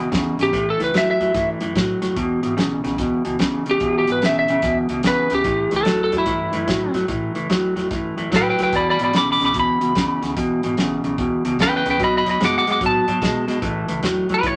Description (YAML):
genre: electric blues shuffle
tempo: 146 BPM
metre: 4/4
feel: swing 65% on 8ths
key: unclear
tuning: A4 = 440 Hz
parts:
  - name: electric guitar through a small old amp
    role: riff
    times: 0.0-14.6 s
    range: E2 to G#3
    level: -24 LUFS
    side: equal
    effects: spring reverb
  - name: upright bass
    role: bass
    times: 0.0-14.6 s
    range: E1 to B2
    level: -37 LUFS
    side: equal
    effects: none
  - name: warm soul drum kit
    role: drums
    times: 0.1-14.6 s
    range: hi-hat, kick drum, snare drum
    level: -27 LUFS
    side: equal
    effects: none
  - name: lightly driven lead guitar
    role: melody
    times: 0.4-14.6 s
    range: E4 to D6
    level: -21 LUFS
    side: equal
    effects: none
room: moderate studio ambience, RT60 0.5 s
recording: none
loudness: -20 LUFS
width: mono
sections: 0.0-14.6 A section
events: none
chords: 0.0 E; 0.5 A5; 2.2 E7(no3); 5.4 A7(no3); 8.7 E7(no3); 12.0 B7; 13.6 A7(no3)